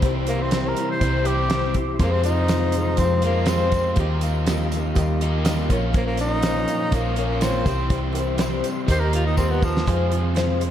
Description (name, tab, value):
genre	folk rock and heartland rock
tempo	122 BPM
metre	4/4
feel	straight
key	F minor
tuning	A4 = 439 Hz
part	picked twelve-string acoustic guitar	accompaniment	0.0-10.7 s	F2 to G4	-28 LUFS	left 5 dB	none
part	warm upright piano	accompaniment	0.0-10.7 s	Eb4 to F5	-34 LUFS	right 3 dB	none
part	mellow tonewheel organ	sustained chords	0.0-10.7 s	G4 to Db6	-35 LUFS	left 1 dB	none
part	crunchy overdriven guitar	riff	0.0-10.7 s	F2 to Ab4	-28 LUFS	right 1 dB	wide subtle chorus
part	hollow-body short-scale picked electric bass	bass	0.0-10.7 s	Bb1 to F2	-23 LUFS	equal	none
part	damped 70s drum kit	drums	0.0-10.7 s	hi-hat, kick drum, snare drum	-25 LUFS	right 1 dB	none
part	breathy tenor saxophone	melody	0.3-9.9 s	F3 to C5	-26 LUFS	equal	diffuse ambient delay
part	tambourine	percussion	2.3-9.7 s	none	-43 LUFS	left 7 dB	none
room	moderate lush hall reverb, RT60 1.9 s, small room ambience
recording	dreamy mix soaked in reverb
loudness	-19 LUFS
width	side -10 dB against mid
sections	0.0-9.9 A section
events	tenor saxophone solo 0.0-9.9; drum fill 9.4-9.9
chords	0.0 C; 2.0 Fm; 4.0 Ebadd9; 5.7 Bbm; 7.7 C; 8.9 Eb; 9.9 Fm